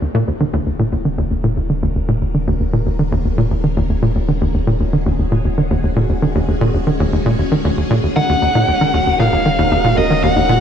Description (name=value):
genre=ambient, sequencer-driven space music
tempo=116 BPM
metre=4/4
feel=straight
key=Eb minor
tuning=A4 = 438 Hz
part: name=string machine, full ensemble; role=sustained chords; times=0.0-10.6 s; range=Ab3 to Bb4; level=-24 LUFS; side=equal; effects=phaser, ensemble chorus, shimmer reverb
part: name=tight sequencer bass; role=riff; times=0.0-10.6 s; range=Eb2 to Eb3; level=-16 LUFS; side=equal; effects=lush chorus, analog delay
part: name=warm sub bass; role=bass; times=0.0-10.6 s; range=Eb1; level=-24 LUFS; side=equal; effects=none
part: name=bluesy overdriven lead guitar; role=melody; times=8.2-10.6 s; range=Eb5 to Gb5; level=-16 LUFS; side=equal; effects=distortion, shimmer reverb, analog delay
part: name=wide unison pluck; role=arpeggios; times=8.2-10.6 s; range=Eb4 to Bb4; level=-23 LUFS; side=right 1 dB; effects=auto-pan, shimmer reverb, analog delay
room=moderate scoring stage reverb, RT60 2.1 s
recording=dark, warm production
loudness=-14 LUFS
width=side -8 dB against mid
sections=0.0-10.6 A section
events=fade-in on string machine 0.0-10.6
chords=0.0 Ebm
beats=0.40 0.92 1.44 | 1.96 2.47 2.99 3.51 | 4.03 4.54 5.06 5.58 | 6.09 6.61 7.13 7.65 | 8.16 8.68 9.20 9.71 | 10.23